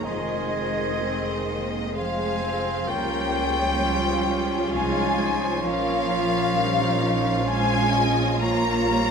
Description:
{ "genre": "cinematic", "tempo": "65 BPM", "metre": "3/4", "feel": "rubato", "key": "unclear", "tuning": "A4 = 440 Hz", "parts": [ { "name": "rich studio violin section", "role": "melody", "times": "0.0-9.1 s", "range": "Eb5 to Bb5", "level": "-27 LUFS", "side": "left 5 dB", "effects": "none" }, { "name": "clear clarinet", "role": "second line", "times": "0.0-9.1 s", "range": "F4 to Ab4", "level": "-32 LUFS", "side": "equal", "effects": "none" }, { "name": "dark cor anglais", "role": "second line", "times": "0.0-9.1 s", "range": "C5 to Db5", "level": "-34 LUFS", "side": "right 4 dB", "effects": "none" }, { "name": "mellow concert flute", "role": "second line", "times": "0.0-9.1 s", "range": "Eb5 to Bb5", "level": "-31 LUFS", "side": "left 2 dB", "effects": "none" }, { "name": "warm symphonic violin section", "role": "second line", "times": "0.0-9.1 s", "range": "F4 to F5", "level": "-33 LUFS", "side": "left 2 dB", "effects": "none" }, { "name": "rich symphonic viola section", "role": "accompaniment", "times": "0.0-9.1 s", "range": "F3 to G5", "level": "-30 LUFS", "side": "right 1 dB", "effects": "none" }, { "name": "mellow French horn section", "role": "sustained chords", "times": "0.0-9.1 s", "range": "F3 to Db4", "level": "-30 LUFS", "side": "equal", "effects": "none" }, { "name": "rich symphonic cello section", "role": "bass", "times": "0.0-9.1 s", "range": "Eb3 to Bb3", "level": "-30 LUFS", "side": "right 3 dB", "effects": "none" }, { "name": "rich symphonic double bass section", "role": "bass", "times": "0.0-9.1 s", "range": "F1 to Db2", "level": "-30 LUFS", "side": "right 3 dB", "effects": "none" } ], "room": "wet scoring stage reverb, RT60 1.7 s", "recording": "minimal, uncompressed stereo recording", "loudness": "-21 LUFS", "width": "side -6 dB against mid", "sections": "0.0-9.1 A section", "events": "none", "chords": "0.1 Fm7; 2.9 Db; 5.6 Bbm", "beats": "| 0.05 0.99 1.95 | 2.88 3.81 4.73 | 5.63 6.55 7.47 | 8.40" }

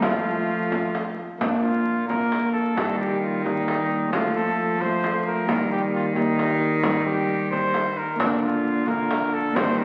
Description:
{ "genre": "classical, renaissance-style consort dance", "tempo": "88 BPM (dotted quarters)", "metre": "6/8", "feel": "straight", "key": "unclear", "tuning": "A4 = 440 Hz", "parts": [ { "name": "clear cornet", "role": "melody", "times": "0.0-9.8 s", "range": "D4 to C5", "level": "-29 LUFS", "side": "equal", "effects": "none" }, { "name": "Celtic harp", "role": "accompaniment", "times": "0.0-9.8 s", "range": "Bb2 to A4", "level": "-32 LUFS", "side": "equal", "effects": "none" }, { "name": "warm trombone", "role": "accompaniment", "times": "0.0-9.8 s", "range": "D3 to Bb3", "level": "-30 LUFS", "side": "equal", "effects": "none" }, { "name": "dark cello", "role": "bass", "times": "0.0-9.8 s", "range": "Bb2 to F3", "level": "-30 LUFS", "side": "equal", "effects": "none" }, { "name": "frame drum", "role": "percussion", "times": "0.0-9.8 s", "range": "none", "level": "-31 LUFS", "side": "equal", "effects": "none" } ], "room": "wet recital hall reverb, RT60 1.5 s", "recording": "very old 78 rpm record, vinyl crackle", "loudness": "-23 LUFS", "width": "mono", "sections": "0.0-1.4 A section; 1.4-9.8 B section", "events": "none", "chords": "0.0 F; 1.4 Bb; 2.8 Eb; 4.1 F; 5.5 Eb; 8.2 Bb", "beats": "| 0.03 0.72 | 1.41 2.09 | 2.77 3.45 | 4.13 4.81 | 5.49 6.17 | 6.84 7.52 | 8.20 8.88 | 9.57" }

